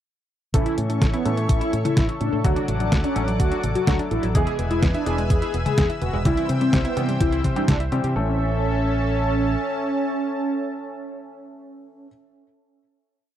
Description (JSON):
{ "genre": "italo disco", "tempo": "126 BPM", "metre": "4/4", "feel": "straight", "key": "A major", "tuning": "A4 = 442 Hz", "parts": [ { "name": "mellow synth brass", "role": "melody", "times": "0.5-12.1 s", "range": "B3 to G#4", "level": "-26 LUFS", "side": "right 1 dB", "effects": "chorus, tape echo" }, { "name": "lush unison pad", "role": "sustained chords", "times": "0.5-12.1 s", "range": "C#4 to E6", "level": "-30 LUFS", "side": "equal", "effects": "chorus" }, { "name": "analog pluck", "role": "arpeggios", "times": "0.5-8.4 s", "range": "F#3 to A4", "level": "-31 LUFS", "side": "right 1 dB", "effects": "chorus, tape echo" }, { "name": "warm baby grand piano", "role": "stabs", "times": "0.5-12.1 s", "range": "E3 to A4", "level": "-30 LUFS", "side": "left 3 dB", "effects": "none" }, { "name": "fingered electric bass with an envelope filter", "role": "bass", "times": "0.5-9.5 s", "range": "E1 to C3", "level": "-25 LUFS", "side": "equal", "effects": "none" }, { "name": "detuned 8-bit digital drum machine", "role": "drums", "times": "0.5-8.1 s", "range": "hi-hat, snare drum, toms", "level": "-26 LUFS", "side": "left 1 dB", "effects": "overdrive" }, { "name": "electronic kick drum", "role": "drums", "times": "0.5-7.8 s", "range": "none", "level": "-22 LUFS", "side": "equal", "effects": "overdrive" } ], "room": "little or no reverb", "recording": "dry, close 1970s-style studio recording", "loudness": "-19 LUFS", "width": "side -11 dB against mid", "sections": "0.5-8.2 verse; 8.2-12.0 final chord", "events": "none", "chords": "0.5 A; 2.4 D; 4.3 E; 6.3 C; 8.2 A", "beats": "| 0.54 1.01 1.49 1.97 | 2.44 2.92 3.40 3.87 | 4.35 4.83 5.30 5.78 | 6.25 6.73 7.21 7.68 | 8.16 8.63 9.11 9.59 | 10.06 10.54 11.02 11.49" }